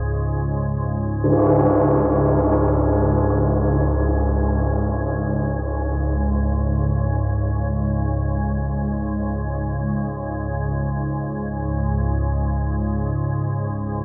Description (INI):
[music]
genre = dark ambient drone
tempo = free time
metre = none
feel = none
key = unclear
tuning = A4 = 440 Hz
[part]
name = organ-like drone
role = drone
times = 0.0-14.0 s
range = C#2 to G#2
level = -23 LUFS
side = equal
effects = ensemble chorus, built-in reverb
[part]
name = tam-tam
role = percussion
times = 1.2-1.5 s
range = none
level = -23 LUFS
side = equal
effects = low-pass filter on cymbals
[sound]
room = wet cathedral reverb, RT60 5.1 s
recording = worn, warbling old tape, cassette tape, warbly pitch drift, nothing above 7.6 kHz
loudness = -21 LUFS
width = mono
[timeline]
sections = 0.0-14.0 A section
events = none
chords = 0.0 C#5